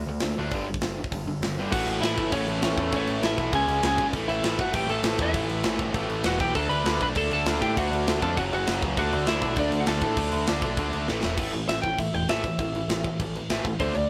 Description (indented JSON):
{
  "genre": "punk rock",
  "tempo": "199 BPM",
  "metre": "4/4",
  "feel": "straight",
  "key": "A mixolydian",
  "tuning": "A4 = 440 Hz",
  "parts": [
    { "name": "crunchy overdriven guitar", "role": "riff", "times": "0.0-14.1 s", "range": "E2 to D4", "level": "-31 LUFS", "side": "equal", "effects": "none" },
    { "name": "growling picked electric bass", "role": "bass", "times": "0.0-14.0 s", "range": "E1 to A2", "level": "-33 LUFS", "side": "equal", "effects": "overdrive" },
    { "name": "tight metal drum kit", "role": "drums", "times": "0.2-14.0 s", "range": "crash cymbal, hi-hat, kick drum, snare drum", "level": "-32 LUFS", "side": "equal", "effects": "none" },
    { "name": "lightly driven lead guitar", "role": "melody", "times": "1.7-14.1 s", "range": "C#4 to B5", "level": "-30 LUFS", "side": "equal", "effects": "none" }
  ],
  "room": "light reverb",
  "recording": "band playing live in one room",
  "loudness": "-26 LUFS",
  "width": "mono",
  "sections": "0.0-1.7 A section; 1.7-11.4 B section; 11.4-14.1 C section",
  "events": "drum fill 11.1-11.4; lead electric guitar solo 11.4-14.1",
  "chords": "0.0 D5; 0.5 G5; 1.7 A; 3.5 C#5; 4.1 A5; 6.3 E5; 6.6 D; 8.4 F#5; 9.0 D; 11.1 A5",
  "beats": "0.21 | 0.52 0.82 1.12 1.42 | 1.73 2.03 2.33 2.63 | 2.93 3.23 3.54 3.84 | 4.14 4.44 4.74 5.05 | 5.35 5.65 5.95 6.25 | 6.55 6.86 7.16 7.46 | 7.76 8.06 8.37 8.67 | 8.97 9.27 9.57 9.87 | 10.18 10.48 10.78 11.08 | 11.38 11.69 11.99 12.29 | 12.59 12.89 13.20 13.50 | 13.80"
}